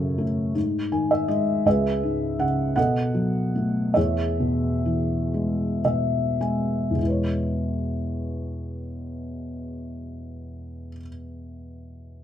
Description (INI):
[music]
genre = classical, lyrical solo piano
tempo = 32-55 BPM (dotted quarters)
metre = 6/8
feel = rubato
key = E major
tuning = A4 = 440 Hz
[part]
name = felt-muted upright piano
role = solo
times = 0.0-12.2 s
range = C#2 to G#5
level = -23 LUFS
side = equal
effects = none
[sound]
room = moderate studio reverb, RT60 0.9 s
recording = none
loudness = -22 LUFS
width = side -10 dB against mid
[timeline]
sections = 0.0-7.0 A section; 7.0-10.6 B section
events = felt piano fill 0.6-1.7, 5.3-7.0; slowing down 1.7-7.0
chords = 0.0 F#m; 0.6 G#5; 1.7 C#m7; 2.8 B7; 4.0 E6